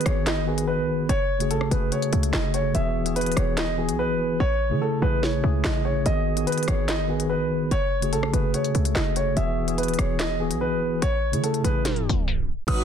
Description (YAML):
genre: hip hop, drill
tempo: 145 BPM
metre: 4/4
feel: half-time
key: unclear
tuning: A4 = 440 Hz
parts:
  - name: mellow tine electric piano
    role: accompaniment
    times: 0.0-12.7 s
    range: C#3 to B4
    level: -26 LUFS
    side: equal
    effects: medium stereo tremolo
  - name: drill drum kit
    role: drums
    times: 0.0-12.8 s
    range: crash cymbal, handclaps, hi-hat, rim click, snare drum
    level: -29 LUFS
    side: left 1 dB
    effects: none
  - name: dark grand piano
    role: melody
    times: 0.1-12.8 s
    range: G#4 to D#6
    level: -27 LUFS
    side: equal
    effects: ping-pong delay
  - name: short 808-style bass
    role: bass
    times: 0.1-12.8 s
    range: E1 to E3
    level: -26 LUFS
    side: equal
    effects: none
  - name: warm symphonic string section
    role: sustained chords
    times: 12.7-12.8 s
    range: G#3 to B4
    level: -27 LUFS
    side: right 2 dB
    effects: none
room: light reverb, digital ambience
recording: dense, heavily limited modern master, tape stop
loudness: -21 LUFS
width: side -8 dB against mid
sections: 0.0-12.7 A section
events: hi-hats muted 4.4-6.1; tape stop 11.9-12.7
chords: 0.0 G#m7; 1.1 F#madd9; 2.7 Eadd9; 4.4 Amaj7; 6.1 G#m7; 7.7 F#madd9; 9.4 Eadd9; 11.0 Amaj7